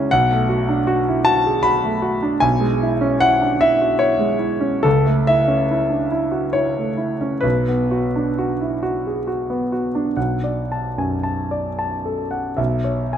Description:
neoclassical minimalist piano; 64-78 BPM; 3/4; rubato; B dorian; A4 = 440 Hz
clear concert grand piano; solo; 0.0-13.2 s; B1 to B5; -17 LUFS; equal
moderate scoring stage reverb, RT60 2.1 s; -17 LUFS; side -9 dB against mid
0.0-10.2 A section; 10.2-13.2 B section
0.1 Bm7; 2.4 E6/B; 4.8 A/C#; 7.4 Bm; 10.2 Bm7; 12.6 E5/B
| 0.10 0.86 1.65 | 2.43 3.23 4.02 | 4.85 5.71 6.56 | 7.44 8.37 9.27 | 10.16 10.98 11.79 | 12.59

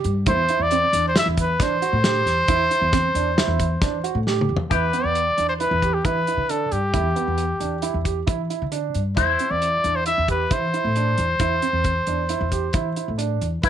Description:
progressive instrumental, band music in an uneven meter; 134 BPM; 5/4; straight; A4 = 441 Hz
warm grand piano; arpeggios; 0.0-13.7 s; B3 to G4; -27 LUFS; right 14 dB
upright bass; bass; 0.0-13.7 s; E2 to E3; -25 LUFS; left 1 dB
warm soul drum kit; drums; 0.0-13.7 s; hi-hat, kick drum, snare drum, toms; -24 LUFS; left 1 dB
warm trumpet; melody; 0.3-13.7 s; G4 to E5; -22 LUFS; left 1 dB
electric guitar with an envelope filter; second line; 4.7-13.7 s; E4 to G4; -26 LUFS; left 13 dB
light reverb, studio reverb; 1960s-style stereo with parts hard left and right; -19 LUFS; side -10 dB against mid
0.0-4.7 A section; 4.7-13.7 B section
drum fill 4.3-4.7
0.3 C/E; 4.7 Em7; 9.2 Cadd9/E
| 0.27 0.71 1.15 1.60 2.04 | 2.48 2.93 3.37 3.82 4.26 | 4.71 5.15 5.60 6.04 6.49 | 6.94 7.38 7.83 8.28 8.72 | 9.17 9.62 10.06 10.51 10.96 | 11.40 11.85 12.30 12.74 13.19 | 13.64

